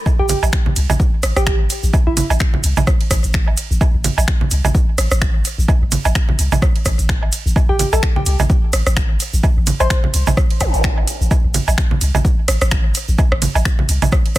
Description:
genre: minimal techno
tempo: 128 BPM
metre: 4/4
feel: swing 57% on 16ths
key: A minor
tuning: A4 = 441 Hz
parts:
  - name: electronic kick drum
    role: drums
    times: 0.1-14.4 s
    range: none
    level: -16 LUFS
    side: equal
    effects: none
  - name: electronic woodblock, congas and rim click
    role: percussion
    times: 0.1-14.4 s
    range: none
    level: -21 LUFS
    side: right 4 dB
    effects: soft clipping on snare, ping-pong delay
  - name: tube shaker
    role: percussion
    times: 0.1-14.4 s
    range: none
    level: -28 LUFS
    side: right 3 dB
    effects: none
  - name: soft struck synth lead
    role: melody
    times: 0.2-2.3, 7.7-10.0 s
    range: E4 to C5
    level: -23 LUFS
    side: equal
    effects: chorus, ping-pong delay
  - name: punchy sub bass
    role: bass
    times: 0.2-14.4 s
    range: G1 to C2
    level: -17 LUFS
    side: equal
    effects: sidechain pumping
  - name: minimal click drum kit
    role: drums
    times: 0.3-14.4 s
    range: finger snaps, hi-hat, ride cymbal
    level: -24 LUFS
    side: equal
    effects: overdrive, soft clipping on snare
  - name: zap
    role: sound effects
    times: 10.6-10.7 s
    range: none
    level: -24 LUFS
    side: left 1 dB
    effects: none
room: little or no reverb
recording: dense, heavily limited modern master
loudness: -14 LUFS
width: side -16 dB against mid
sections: 0.0-14.4 A section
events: none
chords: none

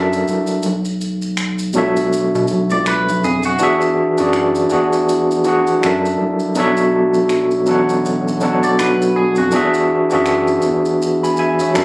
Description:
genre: R&B, neo-soul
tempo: 81 BPM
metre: 4/4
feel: swing 58% on 16ths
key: B dorian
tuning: A4 = 441 Hz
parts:
  - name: overdriven tine electric piano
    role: accompaniment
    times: 0.0-11.8 s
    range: B2 to B5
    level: -14 LUFS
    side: equal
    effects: fast tremolo
  - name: rubbery square bass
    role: bass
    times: 0.0-11.8 s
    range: A1 to B2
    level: -22 LUFS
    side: equal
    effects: none
  - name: maracas and finger snaps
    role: percussion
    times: 0.1-11.8 s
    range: none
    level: -28 LUFS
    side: equal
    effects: none
  - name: electric guitar through a small old amp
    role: second line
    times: 2.7-3.8, 8.6-9.7 s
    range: F#4 to D5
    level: -19 LUFS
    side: right 1 dB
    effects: plate reverb
room: moderate small room ambience, RT60 0.5 s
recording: recorded on a phone in the room, studio reverb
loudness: -13 LUFS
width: side -24 dB against mid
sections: 0.0-3.6 A section; 3.6-11.8 B section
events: none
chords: 0.0 F#7alt; 0.6 Bm11; 3.6 E7; 5.8 F#7alt; 6.6 Bm11; 9.5 E7

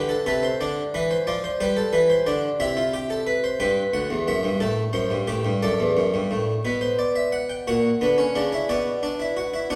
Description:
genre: classical, baroque-style 3-part fugue for harpsichord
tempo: 59 BPM (dotted quarters)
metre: 6/8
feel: straight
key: unclear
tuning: A4 = 440 Hz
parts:
  - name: harpsichord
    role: solo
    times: 0.0-9.8 s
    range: D2 to G5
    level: -23 LUFS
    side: equal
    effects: none
room: wet recital hall reverb, RT60 1.6 s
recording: heard from further back in the room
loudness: -23 LUFS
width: mono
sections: 0.0-7.7 A section; 7.7-9.8 B section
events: none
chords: 0.0 C5; 0.6 Dm7; 1.6 G; 2.6 C; 3.6 G; 4.6 Am7; 5.6 D; 6.7 G/B; 7.7 F#7/A#; 8.7 Bm

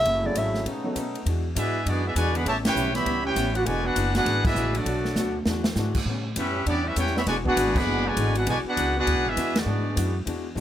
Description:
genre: jazz, big band swing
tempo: 200 BPM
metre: 4/4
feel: swing 63% on 8ths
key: E major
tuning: A4 = 440 Hz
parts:
  - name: mellow clarinet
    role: melody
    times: 0.0-0.7 s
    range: D5 to E5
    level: -23 LUFS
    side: equal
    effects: none
  - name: muted trombone section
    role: sustained chords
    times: 0.0-1.2 s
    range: C#3 to E4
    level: -36 LUFS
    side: right 1 dB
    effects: none
  - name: upright bass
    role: bass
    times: 0.0-10.6 s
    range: E1 to A2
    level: -28 LUFS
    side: equal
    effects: none
  - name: archtop guitar, miked and amplified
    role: accompaniment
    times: 0.1-10.6 s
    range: A2 to A4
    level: -33 LUFS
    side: left 4 dB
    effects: none
  - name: swinging big-band drum kit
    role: drums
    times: 0.1-10.6 s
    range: crash cymbal, hi-hat, kick drum, ride cymbal, snare drum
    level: -30 LUFS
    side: equal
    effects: none
  - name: warm concert grand piano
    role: accompaniment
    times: 0.2-0.9 s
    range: F#3 to A4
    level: -31 LUFS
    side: right 1 dB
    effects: none
  - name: brilliant trumpet section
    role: melody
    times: 1.6-10.2 s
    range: B3 to B5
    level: -26 LUFS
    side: equal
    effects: none
  - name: warm trombone section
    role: second line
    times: 1.6-10.2 s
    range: B2 to G4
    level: -28 LUFS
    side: right 2 dB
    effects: none
room: moderate club reverb, RT60 0.5 s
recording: none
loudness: -22 LUFS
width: side -11 dB against mid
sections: 0.0-1.3 A section; 1.3-10.6 B section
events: clarinet solo 0.0-1.3; break 0.7-1.3; band accent 2.6, 4.4, 7.7, 9.5; drum fill 5.2-5.8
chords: 0.1 F#m7; 0.7 B9; 1.3 E9; 2.5 A9; 3.7 E9; 4.9 Bm7; 5.5 E9; 6.1 A9; 7.3 E9

